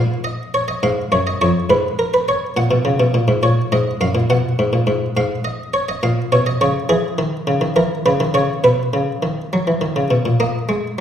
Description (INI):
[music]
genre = classical, baroque-style two-part invention for harpsichord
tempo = 69 BPM (dotted quarters)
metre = 6/8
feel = straight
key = F# major, B major from 6.9 s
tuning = A4 = 440 Hz
[part]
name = buff-stop harpsichord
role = solo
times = 0.0-11.0 s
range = E#2 to F#5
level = -15 LUFS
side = equal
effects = none
[sound]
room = wet recital hall reverb, RT60 1.3 s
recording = heard from further back in the room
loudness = -15 LUFS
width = side -9 dB against mid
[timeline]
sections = 0.0-3.4 A section; 3.4-10.4 B section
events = none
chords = 0.0 A#madd11; 0.8 C#; 1.7 C#5/G#; 2.6 F#/A#; 3.4 F#; 4.3 B5; 5.2 C#add9/G#; 6.0 A#m; 6.9 C#m; 7.8 C#m13; 8.6 B; 10.4 F#69 (rootless)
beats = 0.82 | 1.69 2.56 | 3.43 4.30 | 5.17 6.03 | 6.90 7.76 | 8.64 9.52 | 10.40